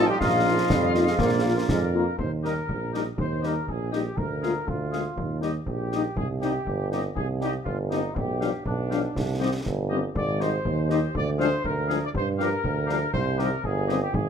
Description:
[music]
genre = military-style march for wind band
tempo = 121 BPM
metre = 2/4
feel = straight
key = Eb major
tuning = A4 = 440 Hz
[part]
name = mellow trumpet section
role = melody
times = 0.0-14.3 s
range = D4 to D5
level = -30 LUFS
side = left 2 dB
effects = none
[part]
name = clear woodwind section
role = second line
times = 0.0-14.0 s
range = F4 to F5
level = -33 LUFS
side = left 3 dB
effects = none
[part]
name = mellow euphonium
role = second line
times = 0.0-1.9 s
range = F3 to G3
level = -31 LUFS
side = right 7 dB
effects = none
[part]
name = piccolo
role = second line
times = 0.0-1.9 s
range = F5 to G5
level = -33 LUFS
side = left 5 dB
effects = none
[part]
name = mellow French horn section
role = accompaniment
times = 0.0-14.0 s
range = Eb3 to F4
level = -28 LUFS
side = left 6 dB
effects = none
[part]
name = bright trombone section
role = sustained chords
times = 0.0-2.1 s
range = F3 to Eb4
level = -29 LUFS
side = right 3 dB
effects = none
[part]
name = clear tuba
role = bass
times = 0.0-14.3 s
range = G1 to G2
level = -27 LUFS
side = right 3 dB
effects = none
[part]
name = concert snare drum and concert bass drum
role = drums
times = 0.2-14.3 s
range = none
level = -31 LUFS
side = equal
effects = none
[sound]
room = moderate large studio reverb, RT60 0.9 s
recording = none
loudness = -23 LUFS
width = side -7 dB against mid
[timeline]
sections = 0.0-2.2 A section; 2.2-14.3 B section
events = none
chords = 0.2 Bbsus4; 1.2 Bb; 2.2 Eb; 4.2 Bb7/D; 5.2 Eb; 6.2 Cm; 8.2 G7/B; 9.1 Cm; 10.1 Abmaj7; 11.1 Ddim; 12.1 Gm7; 13.1 Cm

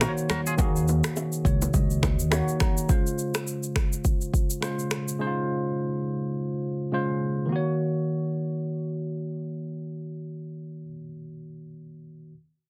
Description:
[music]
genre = afrobeats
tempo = 104 BPM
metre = 4/4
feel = swing 58% on 16ths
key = Eb dorian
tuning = A4 = 444 Hz
[part]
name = barky tine electric piano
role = accompaniment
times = 0.0-12.3 s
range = Db3 to Bb5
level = -31 LUFS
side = equal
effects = subtle chorus
[part]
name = twangy electric guitar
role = riff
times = 0.0-0.5 s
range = F4 to Bb4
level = -35 LUFS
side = equal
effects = digital delay
[part]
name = upright bass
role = bass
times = 0.0-2.4 s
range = Db2 to Eb2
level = -28 LUFS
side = equal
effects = none
[part]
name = afro-pop drum kit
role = drums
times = 0.0-5.2 s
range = finger snaps, kick drum, rim click, shaker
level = -28 LUFS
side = equal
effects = overdrive
[part]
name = bongos and congas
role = percussion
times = 0.0-2.8 s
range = none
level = -37 LUFS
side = equal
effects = none
[sound]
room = light reverb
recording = dense, heavily limited modern master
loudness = -27 LUFS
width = mono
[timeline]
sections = 0.0-7.5 A section; 7.5-9.8 B section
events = tine electric piano fill 1.2-2.9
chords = 0.0 Ebm7; 2.9 Dbmaj7; 7.5 Ebm7

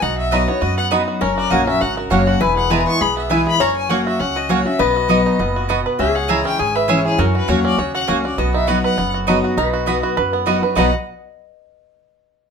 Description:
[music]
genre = bluegrass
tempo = 201 BPM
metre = 4/4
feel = swing 54% on 8ths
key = B major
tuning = A4 = 440 Hz
[part]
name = bluegrass banjo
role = melody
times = 0.0-10.9 s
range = F#3 to B4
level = -22 LUFS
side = right 4 dB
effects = none
[part]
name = clear fiddle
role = melody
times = 0.0-10.9 s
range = G#4 to C#6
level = -22 LUFS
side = left 3 dB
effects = none
[part]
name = lap resonator guitar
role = second line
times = 0.0-10.9 s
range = F#4 to D#5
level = -24 LUFS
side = left 6 dB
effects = none
[part]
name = picked steel-string acoustic guitar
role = accompaniment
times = 0.0-10.9 s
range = E2 to F#4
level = -21 LUFS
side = left 2 dB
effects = none
[part]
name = upright bass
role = bass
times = 0.0-10.9 s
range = E1 to F#2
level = -24 LUFS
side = equal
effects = none
[part]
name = mandolin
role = stabs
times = 0.3-10.9 s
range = A#3 to B5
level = -21 LUFS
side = right 5 dB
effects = none
[sound]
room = moderate studio reverb, RT60 0.7 s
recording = minimal, uncompressed stereo recording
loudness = -15 LUFS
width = side -6 dB against mid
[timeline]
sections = 0.0-9.6 A section; 9.6-10.8 B section; 10.8-12.0 C section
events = none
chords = 0.0 B; 1.2 F#; 2.4 E; 3.6 F#; 4.8 B; 6.0 C#m; 7.2 F#; 8.4 B

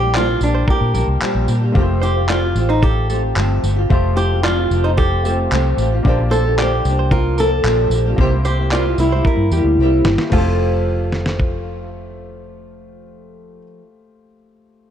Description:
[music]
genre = acoustic pop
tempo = 112 BPM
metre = 4/4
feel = straight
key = F major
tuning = A4 = 440 Hz
[part]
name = flamenco guitar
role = melody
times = 0.0-13.6 s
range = D4 to A4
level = -20 LUFS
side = equal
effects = none
[part]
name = flamenco guitar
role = accompaniment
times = 0.0-13.9 s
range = Bb2 to G4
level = -23 LUFS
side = equal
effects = double-tracked left and right
[part]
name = vintage muted fingered electric bass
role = bass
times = 0.0-13.6 s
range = F1 to Bb2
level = -18 LUFS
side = equal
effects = none
[part]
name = direct-recorded clean electric guitar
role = arpeggios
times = 0.1-11.9 s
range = F4 to D5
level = -29 LUFS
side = right 7 dB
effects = warbly pitch drift, ping-pong delay
[part]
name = dusty soul sampler-style drum kit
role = drums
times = 0.1-11.5 s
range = crash cymbal, handclaps, kick drum, snare drum, tambourine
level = -20 LUFS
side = equal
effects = none
[part]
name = warm baby grand piano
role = accompaniment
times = 1.7-14.9 s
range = A3 to D5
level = -29 LUFS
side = left 4 dB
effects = none
[sound]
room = little or no reverb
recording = dark, warm production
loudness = -14 LUFS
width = side -9 dB against mid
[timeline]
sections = 0.0-10.3 A section; 10.3-14.6 B section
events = drum fill 9.8-10.3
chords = 0.0 Bb6; 1.8 Fadd9; 6.0 Bb6; 8.2 C7; 10.3 Fadd9

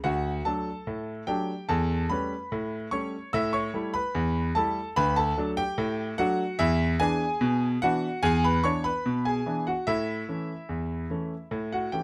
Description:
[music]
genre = ragtime piano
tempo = 73 BPM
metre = 2/4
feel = straight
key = D major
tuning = A4 = 440 Hz
[part]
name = clear concert grand piano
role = solo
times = 0.0-12.0 s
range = D2 to E6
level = -28 LUFS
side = equal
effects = none
[sound]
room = light reverb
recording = none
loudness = -28 LUFS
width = mono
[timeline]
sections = 0.0-12.0 A section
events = none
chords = 0.0 D; 1.7 A7/E; 5.0 D; 6.6 E7; 9.9 A

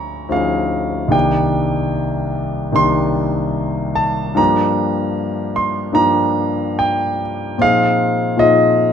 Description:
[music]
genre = classical, impressionist solo piano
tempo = 66-79 BPM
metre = 4/4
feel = rubato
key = C minor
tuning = A4 = 445 Hz
[part]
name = clear concert grand piano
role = solo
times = 0.0-8.9 s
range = C2 to Db6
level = -15 LUFS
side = equal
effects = none
[sound]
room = moderate recital hall reverb, RT60 1.4 s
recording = close, detailed microphones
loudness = -15 LUFS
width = side -8 dB against mid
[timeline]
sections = 0.0-8.9 A section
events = none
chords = 0.0 Db9/D; 1.1 Cm9; 4.4 Gm7; 7.6 Bb9sus4

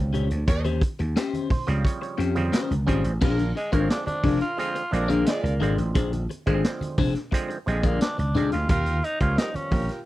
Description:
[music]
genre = funk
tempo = 88 BPM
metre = 4/4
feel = straight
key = Bb mixolydian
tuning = A4 = 440 Hz
[part]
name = auto-wah clav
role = stabs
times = 0.0-9.8 s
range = C3 to Db5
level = -32 LUFS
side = right 4 dB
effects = none
[part]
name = vintage slap bass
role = bass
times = 0.0-9.9 s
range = F1 to F2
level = -25 LUFS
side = equal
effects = none
[part]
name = electric guitar at the edge of break-up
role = accompaniment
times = 0.1-8.6 s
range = Db4 to D5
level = -27 LUFS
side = left 6 dB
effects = phaser
[part]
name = vintage drum kit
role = drums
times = 0.1-10.0 s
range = crash cymbal, hi-hat, kick drum, snare drum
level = -25 LUFS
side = equal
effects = none
[part]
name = congas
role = percussion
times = 0.1-9.9 s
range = none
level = -35 LUFS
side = right 3 dB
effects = none
[part]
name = warm horn section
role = second line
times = 0.5-10.0 s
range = D4 to Eb5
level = -33 LUFS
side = right 2 dB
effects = none
[part]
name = raspy tenor saxophone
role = melody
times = 3.6-9.9 s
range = Ab3 to F4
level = -29 LUFS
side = equal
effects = none
[sound]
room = little or no reverb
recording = dry, close 1970s-style studio recording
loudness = -22 LUFS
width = side -16 dB against mid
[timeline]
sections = 0.0-3.2 A section; 3.2-10.1 B section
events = band accent 0.5-3.2; clav fill 1.2-3.2; tenor saxophone solo 3.2-10.1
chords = 0.0 Eb13; 3.2 Bb9; 8.7 Eb9

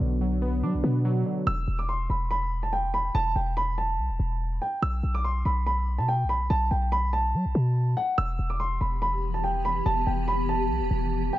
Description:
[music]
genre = hip hop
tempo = 143 BPM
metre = 4/4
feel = half-time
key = E minor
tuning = A4 = 440 Hz
[part]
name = warbly lo-fi synth keys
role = accompaniment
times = 0.0-1.5 s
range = B2 to D4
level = -28 LUFS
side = equal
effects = chorus, low-pass filter
[part]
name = warm 808-style bass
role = bass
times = 0.0-11.3 s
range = E1 to F#3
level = -26 LUFS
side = equal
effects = none
[part]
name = dark concert grand piano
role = melody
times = 1.5-11.4 s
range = F#5 to E6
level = -28 LUFS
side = right 1 dB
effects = low-pass filter, tape echo
[part]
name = granular cloud pad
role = sustained chords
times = 8.9-11.4 s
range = E3 to G4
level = -31 LUFS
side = left 2 dB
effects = built-in reverb
[sound]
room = little or no reverb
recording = none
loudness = -24 LUFS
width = side -14 dB against mid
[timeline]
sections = 0.0-1.5 A section; 1.5-11.4 B section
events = none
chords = 0.0 Bm; 1.5 E5; 4.8 B5; 8.2 Em

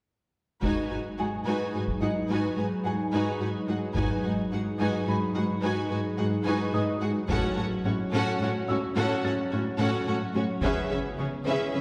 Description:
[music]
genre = cinematic, hybrid orchestral and electronic film score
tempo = 72 BPM (dotted quarters)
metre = 6/8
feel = straight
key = G# phrygian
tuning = A4 = 439 Hz
[part]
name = warm symphonic violin section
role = second line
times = 0.6-11.8 s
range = F#4 to G#5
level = -37 LUFS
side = equal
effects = none
[part]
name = rich symphonic viola section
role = accompaniment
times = 0.6-11.8 s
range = C#4 to G#4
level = -34 LUFS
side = equal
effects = none
[part]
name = warbly tape-like pad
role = sustained chords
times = 1.1-11.8 s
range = F#3 to C#5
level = -34 LUFS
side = equal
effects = chorus, built-in reverb
[part]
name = dark symphonic cello section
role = bass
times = 0.6-11.8 s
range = G#2 to C#3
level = -33 LUFS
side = equal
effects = none
[part]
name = taiko ensemble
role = drums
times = 0.6-11.7 s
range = none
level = -36 LUFS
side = equal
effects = none
[part]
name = dark grand piano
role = texture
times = 1.2-11.8 s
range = D#4 to A6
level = -41 LUFS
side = equal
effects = delay
[sound]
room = wet scoring stage reverb, RT60 1.8 s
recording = heard from further back in the room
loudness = -28 LUFS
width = mono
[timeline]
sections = 0.6-11.8 A section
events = build-up 0.6-11.8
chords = 0.6 G#m7; 7.3 F#m/A; 10.6 C#m7

